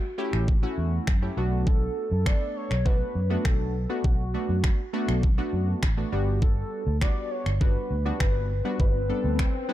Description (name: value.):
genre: dance-pop.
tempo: 101 BPM.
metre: 4/4.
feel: straight.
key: B minor.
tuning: A4 = 441 Hz.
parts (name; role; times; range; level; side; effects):
warm velvety synth lead; melody; 0.0-9.7 s; F#4 to D5; -33 LUFS; equal; chorus, digital delay.
funky polysynth comp; accompaniment; 0.0-9.7 s; G3 to A4; -32 LUFS; equal; chorus, sidechain pumping.
vintage muted fingered electric bass; bass; 0.3-9.4 s; G1 to F#2; -27 LUFS; equal; sidechain pumping.
pop drum kit; drums; 0.3-9.5 s; finger snaps, kick drum; -24 LUFS; equal; overdrive.
swell; sound effects; 8.5-9.7 s; none; -36 LUFS; left 5 dB; none.
room: little or no reverb.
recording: dark, warm production.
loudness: -23 LUFS.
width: side -14 dB against mid.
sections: 0.0-9.7 A section.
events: swell 8.5-9.7.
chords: 0.0 A7; 1.4 Bm7; 6.1 Gmaj7.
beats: 0.48 1.07 | 1.67 2.26 2.86 3.45 | 4.04 4.64 5.23 5.83 | 6.42 7.01 7.61 8.20 | 8.80 9.39.